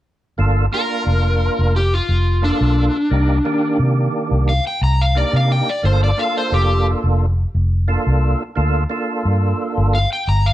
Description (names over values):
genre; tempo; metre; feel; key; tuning
blues; 88 BPM; 4/4; straight; G minor; A4 = 439 Hz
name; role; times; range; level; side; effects
percussive tonewheel organ; accompaniment; 0.4-10.0 s; Eb3 to Bb4; -22 LUFS; right 2 dB; slow rotary speaker, overdrive, chorus vibrato
vintage muted fingered electric bass; bass; 0.4-10.5 s; F1 to C3; -16 LUFS; equal; none
overdriven slide guitar; melody; 0.7-10.5 s; D4 to Bb5; -20 LUFS; left 2 dB; slapback echo, plate reverb
room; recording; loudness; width
light reverb; none; -15 LUFS; side -14 dB against mid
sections
0.4-10.5 A section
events
none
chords
0.4 Gm9 (rootless); 3.1 Cm9; 5.8 Gm9